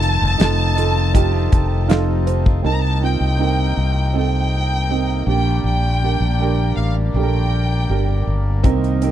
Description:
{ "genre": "pop ballad", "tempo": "80 BPM", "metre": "4/4", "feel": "straight", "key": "G minor", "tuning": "A4 = 440 Hz", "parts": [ { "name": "warm symphonic violin section", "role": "melody", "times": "0.0-8.2 s", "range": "F5 to Bb5", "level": "-24 LUFS", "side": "left 1 dB", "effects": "tape echo" }, { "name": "felt-muted upright piano", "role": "accompaniment", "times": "0.0-9.1 s", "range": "Bb2 to A5", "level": "-23 LUFS", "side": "right 14 dB", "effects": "none" }, { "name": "hand-pumped harmonium", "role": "sustained chords", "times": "0.0-9.1 s", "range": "C3 to A4", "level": "-29 LUFS", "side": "left 4 dB", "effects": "none" }, { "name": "direct-recorded clean electric guitar", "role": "arpeggios", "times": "0.0-2.7, 8.6-9.1 s", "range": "F2 to G4", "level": "-28 LUFS", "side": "left 19 dB", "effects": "spring reverb" }, { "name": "mellow fretless electric bass", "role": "bass", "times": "0.0-9.1 s", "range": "F1 to C2", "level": "-18 LUFS", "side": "left 1 dB", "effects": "none" }, { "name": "damped 70s drum kit", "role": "drums", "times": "0.0-2.6, 8.6-9.1 s", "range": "hi-hat, kick drum, snare drum", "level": "-15 LUFS", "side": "left 1 dB", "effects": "none" } ], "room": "little or no reverb", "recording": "dry, close 1970s-style studio recording", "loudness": "-15 LUFS", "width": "side -11 dB against mid", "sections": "0.0-2.6 A section; 2.6-9.1 B section", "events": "felt piano fill 1.1-2.6", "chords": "0.0 F7; 2.6 Cm7; 5.3 Gm" }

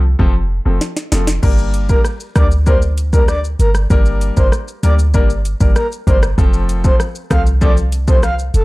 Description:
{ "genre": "dancehall", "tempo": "97 BPM", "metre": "4/4", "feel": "straight", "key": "G minor", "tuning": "A4 = 442 Hz", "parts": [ { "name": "clean 808-style bass", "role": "bass", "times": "0.0-8.6 s", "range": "F1 to D2", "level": "-15 LUFS", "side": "equal", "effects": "none" }, { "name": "warm baby grand piano", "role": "accompaniment", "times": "0.2-8.2 s", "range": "F3 to Bb4", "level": "-22 LUFS", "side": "left 3 dB", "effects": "none" }, { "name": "afro-pop drum kit", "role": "drums", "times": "0.2-8.6 s", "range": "crash cymbal, hi-hat, kick drum, rim click, shaker, snare drum", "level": "-14 LUFS", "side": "equal", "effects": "none" }, { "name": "breathy flute-like synth lead", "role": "melody", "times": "1.9-8.6 s", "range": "A4 to F5", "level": "-21 LUFS", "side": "equal", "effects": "chorus" } ], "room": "digital ambience", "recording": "dark, warm production", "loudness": "-12 LUFS", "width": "side -20 dB against mid", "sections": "0.0-1.4 A section; 1.4-8.6 B section", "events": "drum fill 0.8-1.4", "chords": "0.0 F; 1.4 Gm; 6.4 F" }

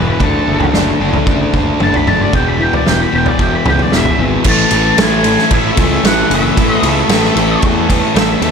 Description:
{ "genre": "quiet-loud alternative rock", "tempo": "113 BPM", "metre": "4/4", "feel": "straight", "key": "unclear", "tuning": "A4 = 440 Hz", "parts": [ { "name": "octave-fuzz lead guitar", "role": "melody", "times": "0.0-8.5 s", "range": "A4 to B5", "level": "-18 LUFS", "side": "equal", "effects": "distortion, slapback echo, digital delay" }, { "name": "crunchy overdriven guitar", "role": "riff", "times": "0.0-8.5 s", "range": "E2 to D4", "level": "-16 LUFS", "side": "left 9 dB", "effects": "none" }, { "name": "thick fuzz guitar", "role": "riff", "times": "0.0-8.5 s", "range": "E2 to D4", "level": "-19 LUFS", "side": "right 12 dB", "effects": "distortion, slapback echo" }, { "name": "fuzz picked electric bass", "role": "bass", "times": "0.0-8.5 s", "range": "E1 to E2", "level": "-18 LUFS", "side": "right 1 dB", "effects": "overdrive" }, { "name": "loose indie drum kit", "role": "drums", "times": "0.2-8.5 s", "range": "crash cymbal, kick drum, ride cymbal, snare drum, toms", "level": "-15 LUFS", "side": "right 1 dB", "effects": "none" } ], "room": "light reverb, studio ambience", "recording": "none", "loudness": "-10 LUFS", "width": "side -6 dB against mid", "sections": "0.0-4.5 A section; 4.5-8.5 B section", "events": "lead electric guitar solo 0.0-4.5", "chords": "0.2 D/F#; 2.3 E5; 4.5 A5" }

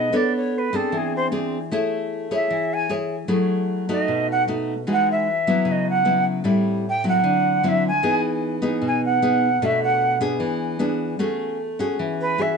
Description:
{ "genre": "bossa nova", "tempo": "152 BPM", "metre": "4/4", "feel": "straight", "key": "E major", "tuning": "A4 = 439 Hz", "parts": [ { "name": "jazz flute", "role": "melody", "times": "0.0-12.6 s", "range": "G#4 to G#5", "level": "-21 LUFS", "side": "right 2 dB", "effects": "plate reverb" }, { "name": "nylon-string guitar", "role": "accompaniment", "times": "0.0-12.6 s", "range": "A2 to C#5", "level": "-22 LUFS", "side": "left 1 dB", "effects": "none" } ], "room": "moderate studio reverb, RT60 0.7 s", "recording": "nothing above 10.4 kHz", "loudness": "-19 LUFS", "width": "side -5 dB against mid", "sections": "0.0-11.2 A section; 11.2-12.6 A section", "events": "flute solo 0.0-12.6", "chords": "0.1 Bm9; 0.9 Eaug7; 1.7 Amaj7; 3.3 F#m9; 4.1 B7; 4.9 Emaj9; 5.7 C#m7; 6.5 Am7; 7.2 D9; 8.0 Emaj7; 9.6 Bm7; 10.4 E7; 11.2 A6" }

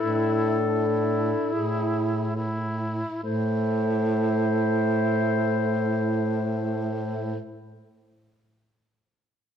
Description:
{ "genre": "classical, lyrical piece for single-reed quartet", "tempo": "35 BPM", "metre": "4/4", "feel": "rubato", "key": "A minor", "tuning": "A4 = 440 Hz", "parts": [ { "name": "mellow clarinet", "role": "melody", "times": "0.0-7.4 s", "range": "G#4 to C5", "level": "-28 LUFS", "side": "left 10 dB", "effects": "none" }, { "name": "warm alto saxophone", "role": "second line", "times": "0.0-7.4 s", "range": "D4 to E4", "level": "-31 LUFS", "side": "right 10 dB", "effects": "none" }, { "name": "warm tenor saxophone", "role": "accompaniment", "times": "0.0-7.4 s", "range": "A3 to E4", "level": "-29 LUFS", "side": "left 1 dB", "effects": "none" }, { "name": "bright baritone saxophone", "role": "bass", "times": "0.0-7.4 s", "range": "A2", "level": "-27 LUFS", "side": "right 2 dB", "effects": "none" } ], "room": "moderate recital hall reverb, RT60 1.7 s", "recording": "none", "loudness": "-23 LUFS", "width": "side -8 dB against mid", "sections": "0.0-3.2 A section; 3.2-9.6 B section", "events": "slowing down 0.0-3.2", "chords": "0.0 A5; 3.2 Am" }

